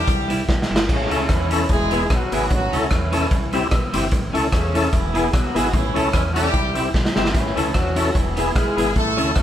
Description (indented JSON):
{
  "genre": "ska",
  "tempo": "149 BPM",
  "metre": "4/4",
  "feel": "swing 55% on 8ths",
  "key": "A major",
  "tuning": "A4 = 439 Hz",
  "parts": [
    { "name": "warm horn section", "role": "melody", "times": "0.0-9.4 s", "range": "C#3 to A4", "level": "-24 LUFS", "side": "equal", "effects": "none" },
    { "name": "fingered electric bass", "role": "bass", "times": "0.1-9.4 s", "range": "E1 to E2", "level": "-26 LUFS", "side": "equal", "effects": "none" },
    { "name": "raw garage drum kit", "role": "drums", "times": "0.1-9.4 s", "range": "crash cymbal, hi-hat, kick drum, rim click, snare drum", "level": "-21 LUFS", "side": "equal", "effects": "tape echo" },
    { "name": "clean electric guitar", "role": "accompaniment", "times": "0.3-9.3 s", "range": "G3 to A4", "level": "-26 LUFS", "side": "right 2 dB", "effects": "none" },
    { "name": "overdriven tonewheel organ", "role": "stabs", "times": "1.1-9.3 s", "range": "B3 to A4", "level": "-25 LUFS", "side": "left 4 dB", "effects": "chorus vibrato, fast rotary speaker" }
  ],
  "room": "moderate stone room reverb, RT60 1.3 s",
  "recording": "band playing live in one room",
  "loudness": "-17 LUFS",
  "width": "side -11 dB against mid",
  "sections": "0.0-9.4 A section",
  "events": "drum fill 0.5-0.9, 6.9-7.3",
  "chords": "0.1 C; 0.9 A; 1.7 E; 2.5 A; 3.3 C; 4.1 A; 4.9 E; 5.7 A; 6.5 C; 7.3 A; 8.2 E"
}